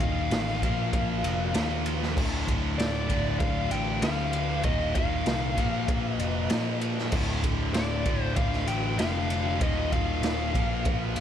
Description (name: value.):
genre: hard rock.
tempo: 97 BPM.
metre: 4/4.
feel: straight.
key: D phrygian.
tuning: A4 = 437 Hz.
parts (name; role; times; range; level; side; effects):
dark smooth lead guitar; melody; 0.0-11.2 s; D5 to G5; -32 LUFS; left 2 dB; overdrive, slapback echo.
crunchy overdriven guitar; riff; 0.0-11.2 s; D2 to Bb3; -33 LUFS; left 11 dB; slapback echo.
scooped high-gain guitar; riff; 0.0-11.2 s; D2 to Bb3; -38 LUFS; equal; distortion, slapback echo.
tight distorted guitar; riff; 0.0-11.2 s; D2 to Bb3; -35 LUFS; right 12 dB; distortion, slapback echo.
picked electric bass; bass; 0.0-11.2 s; D1 to Bb2; -31 LUFS; right 1 dB; none.
raw garage drum kit; drums; 0.0-11.2 s; crash cymbal, kick drum, ride cymbal, snare drum; -29 LUFS; right 1 dB; none.
room: light reverb, small room ambience.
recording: none.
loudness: -25 LUFS.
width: side -9 dB against mid.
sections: 0.0-11.2 A section.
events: none.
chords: 0.0 Eb5; 0.6 Bb5; 2.2 Dm; 4.6 Eb5; 5.6 Bb5; 7.1 Dm; 9.6 Eb5; 10.5 Bb5.